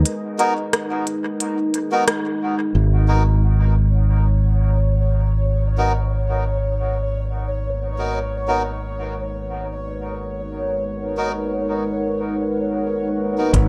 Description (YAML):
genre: ambient dub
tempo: 89 BPM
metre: 4/4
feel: swing 54% on 16ths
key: G# minor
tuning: A4 = 440 Hz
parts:
  - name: deep dark ambient pad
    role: sustained chords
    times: 0.0-13.7 s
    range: G#3 to F#5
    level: -28 LUFS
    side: equal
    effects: chorus, built-in reverb
  - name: modern bright fingered electric bass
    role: bass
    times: 0.0-13.7 s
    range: G#1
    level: -22 LUFS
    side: equal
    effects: none
  - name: organic electronic drum kit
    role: drums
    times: 0.1-2.2, 13.5-13.7 s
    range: hi-hat, rim click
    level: -26 LUFS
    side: equal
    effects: dub echo
  - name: melodica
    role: stabs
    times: 0.4-13.5 s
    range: B3 to A#4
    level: -27 LUFS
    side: equal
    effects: dub echo
  - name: bubbling stepped-filter texture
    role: texture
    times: 3.9-13.7 s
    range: C#5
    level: -31 LUFS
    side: equal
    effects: chorus, built-in reverb
  - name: electronic kick drum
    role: drums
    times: 13.5-13.7 s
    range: none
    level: -20 LUFS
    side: equal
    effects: none
room: light reverb, digital ambience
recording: echo-heavy mix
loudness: -21 LUFS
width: mono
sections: 0.0-2.7 A section; 2.7-13.5 B section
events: break 0.1-2.7; band accent 2.1-2.4; filter sweep on ambient pad 2.7-13.5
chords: 0.0 G#madd9; 2.7 G#m9